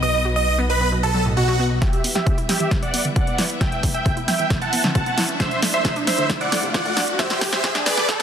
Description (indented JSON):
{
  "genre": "uplifting trance",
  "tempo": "134 BPM",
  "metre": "4/4",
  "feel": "straight",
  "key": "E minor",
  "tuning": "A4 = 440 Hz",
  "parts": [
    { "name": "big supersaw lead", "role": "melody", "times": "0.0-8.2 s", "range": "F#4 to A5", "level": "-22 LUFS", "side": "right 2 dB", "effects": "phaser, sidechain pumping, low-pass filter, tape echo" },
    { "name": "clear grand piano", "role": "second line", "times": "0.0-1.6 s", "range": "F#4 to D#5", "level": "-31 LUFS", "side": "equal", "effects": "none" },
    { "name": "dark studio string section", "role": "sustained chords", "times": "0.0-8.2 s", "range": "F#3 to E5", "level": "-31 LUFS", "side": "left 2 dB", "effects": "sidechain pumping" },
    { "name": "analog pluck", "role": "arpeggios", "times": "0.0-8.2 s", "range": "A2 to E4", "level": "-28 LUFS", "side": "right 1 dB", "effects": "chorus, cassette tape, sidechain pumping, tape echo" },
    { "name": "fat analog bass", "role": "bass", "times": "0.0-1.8 s", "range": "B1", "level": "-22 LUFS", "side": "equal", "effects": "sidechain pumping" },
    { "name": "electronic kick drum", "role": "drums", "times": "1.8-8.2 s", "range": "none", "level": "-22 LUFS", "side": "equal", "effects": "none" },
    { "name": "punchy analog drum machine", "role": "drums", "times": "1.8-8.2 s", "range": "hi-hat, snare drum", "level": "-23 LUFS", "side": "equal", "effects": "overdrive" },
    { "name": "riser", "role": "sound effects", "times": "3.5-8.2 s", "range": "none", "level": "-29 LUFS", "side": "equal", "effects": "none" }
  ],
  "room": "moderate lush hall reverb, RT60 2.2 s",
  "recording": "dense, heavily limited modern master, high-pass filter",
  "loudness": "-18 LUFS",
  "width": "side -8 dB against mid",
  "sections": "0.0-1.8 A section; 1.8-8.2 B section",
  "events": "build-up 1.8-8.2; drum fill 1.8-8.2; filter sweep on supersaw synth 1.8-8.2; filter sweep on synth arpeggio sound 1.8-8.2; filter sweep 1.8-8.2; riser 3.5-8.2",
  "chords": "0.0 B; 1.8 Em; 5.4 Dsus2"
}